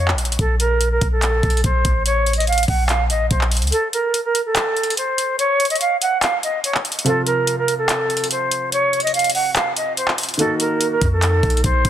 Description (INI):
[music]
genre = hip hop, trap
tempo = 144 BPM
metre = 4/4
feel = half-time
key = unclear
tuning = A4 = 443 Hz
[part]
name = silver concert flute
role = melody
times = 0.0-11.9 s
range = A4 to Gb5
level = -19 LUFS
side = right 1 dB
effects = low-pass filter
[part]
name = clean 808-style bass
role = bass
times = 0.0-3.7, 11.0-11.9 s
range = A1 to F2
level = -19 LUFS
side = equal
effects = none
[part]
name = trap drum kit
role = drums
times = 0.1-11.9 s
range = handclaps, hi-hat, kick drum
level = -20 LUFS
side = equal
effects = none
[part]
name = clear concert grand piano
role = accompaniment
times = 7.0-11.9 s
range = C3 to Gb4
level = -25 LUFS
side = equal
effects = low-pass filter
[sound]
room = light reverb, small room ambience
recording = dense, heavily limited modern master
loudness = -16 LUFS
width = side -10 dB against mid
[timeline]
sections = 0.0-11.9 A section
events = kick muted 3.7-10.4, 10.4-10.8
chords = 0.4 Fadd11 (rootless); 3.7 N.C.; 7.1 F5; 10.4 Ebm